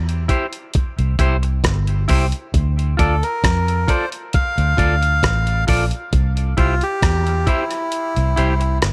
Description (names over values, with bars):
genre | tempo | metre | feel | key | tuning
dub reggae | 67 BPM | 4/4 | straight | unclear | A4 = 440 Hz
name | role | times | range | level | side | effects
vintage muted fingered electric bass | bass | 0.0-8.9 s | G1 to F2 | -21 LUFS | equal | none
dusty soul sampler-style drum kit | drums | 0.1-8.9 s | hi-hat, kick drum, rim click | -22 LUFS | equal | none
clean electric guitar | accompaniment | 0.3-8.6 s | E4 to D5 | -27 LUFS | equal | dub echo
melodica | melody | 3.0-8.8 s | E4 to F5 | -24 LUFS | equal | dub echo
room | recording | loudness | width
light reverb | none | -18 LUFS | mono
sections
0.0-8.9 A section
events
break 0.0-2.5; kick muted 7.9-8.9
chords
0.0 C; 2.5 Dm; 6.1 C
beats
0.74 1.64 | 2.54 3.44 4.33 5.23 | 6.13 7.03 7.92 8.82